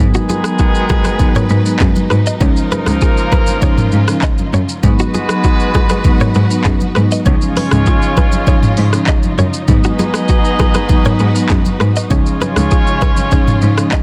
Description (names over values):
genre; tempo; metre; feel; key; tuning
afrobeats; 99 BPM; 4/4; straight; G# dorian; A4 = 438 Hz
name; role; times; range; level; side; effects
clear horn section; second line; 0.0-14.0 s; D#3 to D#5; -22 LUFS; equal; none
marimba with soft mallets; accompaniment; 0.0-14.0 s; E#3 to D#4; -21 LUFS; equal; none
warm studio string section; sustained chords; 0.0-14.0 s; C#3 to B4; -26 LUFS; equal; none
dark cello; bass; 0.0-13.7 s; C#2 to G#2; -17 LUFS; equal; none
direct-recorded clean electric guitar; riff; 0.1-14.0 s; D#4 to D#5; -25 LUFS; equal; tape echo
afro-pop drum kit; drums; 0.1-14.0 s; handclaps, hi-hat, kick drum, rim click, shaker, toms; -16 LUFS; equal; vintage 12-bit sampler grit, soft clipping on snare
congas; percussion; 0.3-13.6 s; none; -25 LUFS; equal; none
room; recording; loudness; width
small room ambience; dense, heavily limited modern master; -13 LUFS; mono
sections
0.0-14.0 A section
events
none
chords
0.0 G#m7; 2.4 C#add9; 4.8 G#m7; 7.3 C#add9; 9.7 G#m7; 12.1 C#add9